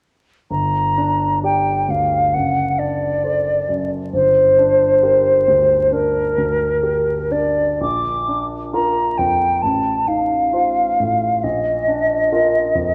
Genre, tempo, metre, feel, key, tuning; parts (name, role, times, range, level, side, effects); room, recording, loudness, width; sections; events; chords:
classical, romantic duo for flute and grand piano; 67 BPM; 4/4; rubato; G minor; A4 = 441 Hz
mellow hollow silver concert flute; melody; 0.5-12.9 s; Bb4 to D6; -18 LUFS; equal
warm grand piano; accompaniment; 0.5-12.9 s; F#1 to D5; -25 LUFS; equal
moderate concert hall reverb, RT60 1.9 s; vinyl crackle; -17 LUFS; mono
0.5-12.9 A section
0.5 Gm; 2.3 D7/F#; 4.1 Gm; 7.8 Bb; 9.6 F7/A; 11.4 Bb